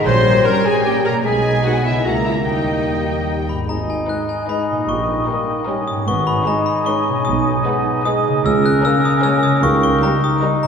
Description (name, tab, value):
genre	cinematic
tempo	151 BPM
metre	3/4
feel	straight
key	G# minor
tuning	A4 = 440 Hz
part	warm clarinet	second line	0.0-10.7 s	C#4 to G5	-26 LUFS	left 1 dB	none
part	warm oboe	second line	0.0-10.5 s	A#4 to B5	-27 LUFS	right 2 dB	none
part	mellow bassoon	accompaniment	0.0-10.7 s	G3 to D#4	-23 LUFS	right 2 dB	none
part	concert harp	arpeggios	0.0-10.7 s	G#2 to B4	-24 LUFS	left 3 dB	none
part	warm studio cello section	bass	0.0-9.9 s	G#2 to B3	-27 LUFS	right 3 dB	none
part	mellow hollow silver concert flute	second line	0.1-10.5 s	D#5 to B#5	-29 LUFS	equal	none
part	rich studio violin section	second line	0.1-10.7 s	C#4 to B#5	-29 LUFS	left 2 dB	none
part	clear studio viola section	accompaniment	0.1-10.7 s	G3 to B#4	-23 LUFS	left 1 dB	none
part	clear studio double bass section	bass	0.1-9.9 s	G#1 to D#2	-25 LUFS	right 2 dB	none
part	mellow tuba	bass	0.1-9.9 s	G#1 to D#2	-26 LUFS	right 2 dB	none
part	mellow French horn section	sustained chords	0.4-10.6 s	G3 to G4	-29 LUFS	left 3 dB	none
part	warm symphonic violin section	melody	0.5-10.7 s	A#4 to A#5	-32 LUFS	left 3 dB	none
part	glockenspiel with brass mallets	melody	3.5-10.7 s	G#5 to F#6	-21 LUFS	left 3 dB	none
room	wet church reverb, RT60 2.6 s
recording	recorded in a church or concert hall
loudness	-15 LUFS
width	side -6 dB against mid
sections	0.0-3.7 A section; 3.7-10.7 B section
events	none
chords	0.1 Gdim/Bb; 1.3 G#m/B; 2.1 A#dim/C#; 2.5 D#; 3.7 G#m; 4.9 D#7/A#; 6.1 G#m; 7.3 G#m/B; 8.5 C#m69; 9.6 D#7/C#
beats	| 0.06 0.46 0.86 | 1.25 1.65 2.05 | 2.46 2.87 3.28 | 3.69 4.09 4.49 | 4.89 5.29 5.68 | 6.08 6.47 6.87 | 7.27 7.66 8.06 | 8.45 8.84 9.24 | 9.63 10.03 10.43